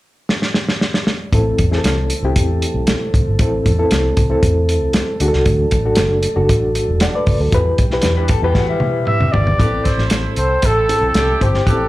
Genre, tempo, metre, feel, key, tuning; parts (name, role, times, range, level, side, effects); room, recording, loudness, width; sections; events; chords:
uptempo 1960s-style soul; 116 BPM; 4/4; straight; A dorian; A4 = 443 Hz
warm soul drum kit; drums; 0.3-11.8 s; hi-hat, kick drum, snare drum, toms; -18 LUFS; equal
reed electric piano; accompaniment; 1.3-11.9 s; B3 to F#5; -20 LUFS; left 1 dB; fast tremolo, slapback echo
mellow tonewheel organ; sustained chords; 1.3-9.6 s; E3 to A4; -24 LUFS; right 2 dB; slow rotary speaker
vintage muted fingered electric bass; bass; 1.3-11.9 s; E1 to E3; -18 LUFS; equal
electric guitar through a small old amp; riff; 8.2-9.4 s; G3 to B4; -24 LUFS; left 9 dB; warbly pitch drift, slapback echo
breathy trumpet; melody; 9.1-11.9 s; G4 to E5; -18 LUFS; equal; slapback echo
warm saxophone section; second line; 9.6-11.9 s; C4 to D5; -23 LUFS; right 2 dB; slapback echo
small room ambience; live gig heard through the venue's PA, club reverb; -14 LUFS; side -17 dB against mid
0.0-1.3 A section; 1.3-9.6 B section; 9.6-11.9 C section
drum fill 0.3-1.3, 8.6-9.6
0.0 N.C.; 1.3 Am; 5.2 D; 7.5 Em; 9.6 Am